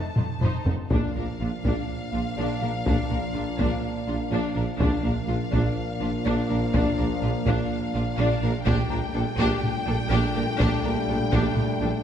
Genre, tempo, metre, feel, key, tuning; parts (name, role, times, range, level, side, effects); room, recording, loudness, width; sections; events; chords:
cinematic, epic orchestral film score; 124 BPM; 4/4; straight; Bb major; A4 = 440 Hz
rich studio violin section; melody; 0.0-12.0 s; F5 to A5; -34 LUFS; left 5 dB
dark French horn section; sustained chords; 0.0-12.0 s; A3 to D4; -33 LUFS; left 4 dB
rich studio violin section; second line; 0.2-11.9 s; D4 to C5; -34 LUFS; left 3 dB
rich symphonic viola section; accompaniment; 0.2-11.9 s; D4 to Eb4; -33 LUFS; equal
rich studio cello section; bass; 0.2-11.9 s; F2 to Bb2; -31 LUFS; right 2 dB
warm studio double bass section; bass; 0.2-11.9 s; F1 to Bb1; -30 LUFS; right 2 dB
solo taiko drums; drums; 0.2-11.8 s; -28 LUFS; left 1 dB
bright trombone section; sustained chords; 0.9-12.0 s; Bb2 to G3; -34 LUFS; right 4 dB
warm tuba; bass; 0.9-11.9 s; Bb1; -32 LUFS; right 3 dB
moderate scoring stage reverb, RT60 2.1 s; dark, warm production; -22 LUFS; side -9 dB against mid
0.9-12.0 A section
drum fill 0.2-0.9
0.0 F7; 0.9 Bb; 8.7 Gmadd9/Bb